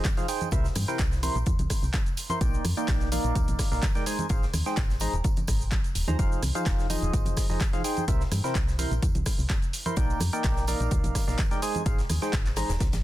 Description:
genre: piano house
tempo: 127 BPM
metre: 4/4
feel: swing 53% on 16ths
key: F dorian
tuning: A4 = 440 Hz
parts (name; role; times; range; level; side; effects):
- percussive organ stab; riff; 0.0-12.7 s; C3 to C6; -31 LUFS; right 1 dB; chorus, sidechain pumping, ping-pong delay
- deep reggae drum kit; drums; 0.0-13.0 s; hi-hat, snare drum; -42 LUFS; left 4 dB; sidechain pumping on hats, high-pass filter on hats, high-pass filter on snare, high-pass filter on room
- electronic kick drum; drums; 0.0-12.9 s; none; -27 LUFS; equal; none
- punchy analog drum machine; drums; 0.0-13.0 s; handclaps, hi-hat, rim click, shaker; -35 LUFS; right 1 dB; none
- tambourine and congas; percussion; 0.0-13.0 s; none; -38 LUFS; right 3 dB; none
- solid FM bass; bass; 0.5-13.0 s; Eb1 to G2; -28 LUFS; equal; sidechain pumping
room: small room ambience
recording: dense, heavily limited modern master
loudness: -24 LUFS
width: side -15 dB against mid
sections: 0.0-13.0 A section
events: none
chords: 0.0 Fm7; 0.5 C7; 2.4 Ebmaj7/Bb; 4.1 Abmaj7; 6.2 Fm7; 8.1 C7; 10.0 Ebmaj7/Bb; 11.6 Abmaj7

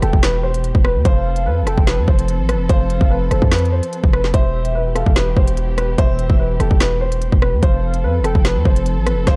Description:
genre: hip hop, drill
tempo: 146 BPM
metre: 4/4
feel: half-time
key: E phrygian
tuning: A4 = 436 Hz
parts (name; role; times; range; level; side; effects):
- dark grand piano; melody; 0.0-9.4 s; A4 to C5; -25 LUFS; equal; delay
- warm velvety synth lead; second line; 0.0-9.4 s; C5 to G5; -32 LUFS; equal; chorus, delay
- dark studio string section; sustained chords; 0.0-9.4 s; B2 to A4; -30 LUFS; equal; none
- hard-hitting 808-style bass; bass; 0.0-9.4 s; E1 to F2; -21 LUFS; equal; none
- drill drum kit; drums; 0.0-9.4 s; hi-hat, kick drum, rim click, snare drum; -18 LUFS; equal; vintage 12-bit sampler grit
room: digital ambience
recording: dark, warm production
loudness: -16 LUFS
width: mono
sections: 0.0-9.4 A section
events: none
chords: 0.0 Em; 1.1 F; 4.3 Em; 7.6 F

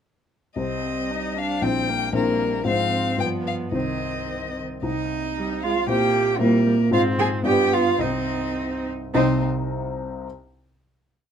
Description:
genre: quick classical-period movement for piano quartet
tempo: 104-117 BPM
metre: 2/4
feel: rubato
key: C minor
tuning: A4 = 439 Hz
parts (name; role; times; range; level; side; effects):
- rich violin; melody; 0.6-9.5 s; Bb4 to Ab5; -27 LUFS; left 7 dB; none
- rich cello; second line; 0.6-9.4 s; Eb3 to Ab4; -25 LUFS; right 5 dB; none
- rich viola; accompaniment; 0.6-9.4 s; G3 to Eb4; -29 LUFS; right 2 dB; none
- warm baby grand piano; accompaniment; 0.6-10.3 s; Bb1 to Eb5; -25 LUFS; left 2 dB; none
room: light reverb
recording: dark, warm production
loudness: -20 LUFS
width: side -8 dB against mid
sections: 0.6-4.8 A section; 4.8-9.1 A section; 9.1-10.2 final chord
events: none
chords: 0.6 Cm; 1.6 C7/Bb; 2.7 Fm/Ab; 3.2 G7; 3.7 Cm; 5.9 C7/Bb; 6.9 Fm/Ab; 7.5 G7; 8.0 Cm

